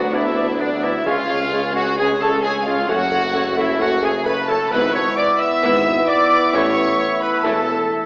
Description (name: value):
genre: classical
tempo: 132 BPM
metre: 4/4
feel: straight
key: F# minor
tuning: A4 = 440 Hz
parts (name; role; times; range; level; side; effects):
- warm symphonic violin section; melody; 0.0-8.1 s; D5 to E6; -29 LUFS; equal; none
- large flute ensemble; second line; 0.0-8.1 s; D5 to E6; -28 LUFS; equal; none
- rich symphonic violin section; second line; 0.0-7.7 s; B3 to G#4; -33 LUFS; equal; none
- warm clarinet; second line; 0.0-8.1 s; D4 to E5; -27 LUFS; equal; none
- rich studio viola section; accompaniment; 0.0-7.7 s; C#3 to B3; -30 LUFS; equal; none
- concert harp; arpeggios; 0.0-8.1 s; F#2 to C#6; -38 LUFS; equal; none
- bright trumpet section; stabs; 0.0-8.1 s; D4 to E5; -25 LUFS; equal; none
- rich symphonic cello section; bass; 0.0-7.8 s; C#2 to A2; -34 LUFS; equal; none
- rich symphonic double bass section; bass; 0.0-7.8 s; E1 to D2; -37 LUFS; equal; none
- warm tuba; bass; 0.0-7.8 s; E1 to D2; -30 LUFS; equal; none
- clear oboe; second line; 0.1-8.1 s; C#5 to E5; -29 LUFS; equal; none
- mellow bassoon; accompaniment; 0.1-8.1 s; G#3 to B3; -28 LUFS; equal; none
- mellow French horn section; sustained chords; 0.1-8.1 s; G#3 to E4; -29 LUFS; equal; none
- timpani; percussion; 1.1-1.7 s; C#3; -40 LUFS; equal; none
room: wet recital hall reverb, RT60 1.7 s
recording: AM radio sound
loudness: -18 LUFS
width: mono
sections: 0.0-8.1 A section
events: none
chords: 0.0 Bm/D; 1.1 C#; 2.9 F#m; 4.7 E/G#; 6.5 A